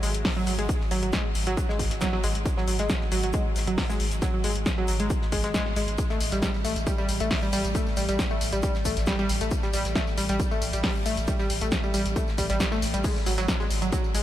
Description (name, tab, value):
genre	driving peak-time techno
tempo	136 BPM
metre	4/4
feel	straight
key	unclear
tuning	A4 = 440 Hz
part	analog pluck	riff	0.0-14.2 s	F#3 to A3	-28 LUFS	equal	chorus, overdrive, sidechain pumping, analog delay
part	saturated sub bass	bass	0.0-14.2 s	G#1 to A1	-32 LUFS	equal	tube saturation, sidechain pumping, low-pass filter
part	damped 70s drum kit	drums	0.0-14.2 s	hi-hat, shaker, snare drum	-42 LUFS	left 2 dB	high-pass filter on hats, high-pass filter on snare, high-pass filter on perc, high-pass filter on room
part	punchy analog drum machine	drums	0.0-14.2 s	crash cymbal, hi-hat, snare drum, tambourine	-31 LUFS	left 1 dB	sidechain pumping on hats, sidechain pumping on cymbals, sidechain pumping on perc
part	electronic kick drum	drums	0.2-14.0 s	none	-28 LUFS	equal	none
room	light reverb, studio reverb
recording	none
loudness	-23 LUFS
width	side -12 dB against mid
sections	0.0-14.2 A section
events	none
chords	0.0 F#sus2/G#; 6.0 Gsus2/A; 13.0 F#sus2/G#